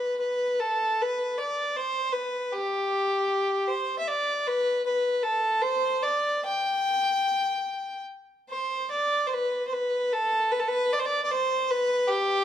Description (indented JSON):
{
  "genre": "celtic folk",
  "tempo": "70-79 BPM",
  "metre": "3/4",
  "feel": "rubato",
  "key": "G major",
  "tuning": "A4 = 440 Hz",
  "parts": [
    { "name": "clear fiddle", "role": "solo", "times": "0.0-12.4 s", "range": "G4 to G5", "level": "-24 LUFS", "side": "equal", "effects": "none" }
  ],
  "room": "moderate recital hall reverb, RT60 1.6 s",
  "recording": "dark, warm production",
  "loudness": "-24 LUFS",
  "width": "side -10 dB against mid",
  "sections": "0.0-8.9 A section; 8.9-12.4 A section",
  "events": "none",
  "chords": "none"
}